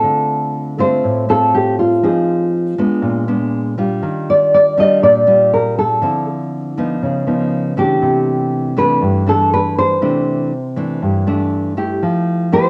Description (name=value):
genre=bossa nova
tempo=120 BPM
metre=4/4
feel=straight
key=C major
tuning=A4 = 436 Hz
part: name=nylon-string guitar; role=melody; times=0.0-12.7 s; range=F4 to Eb5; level=-16 LUFS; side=equal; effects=none
part: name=nylon-string guitar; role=accompaniment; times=0.0-12.7 s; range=G2 to Ab4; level=-20 LUFS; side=equal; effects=none
room=moderate studio reverb, RT60 0.5 s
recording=home recording on cassette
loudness=-16 LUFS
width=mono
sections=0.0-12.0 A section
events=none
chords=0.0 Dm7; 2.0 Fm7; 3.0 Bb7b9; 4.0 Ebmaj9; 6.0 Dm9; 7.0 Db9; 8.0 C69; 12.0 Fmaj9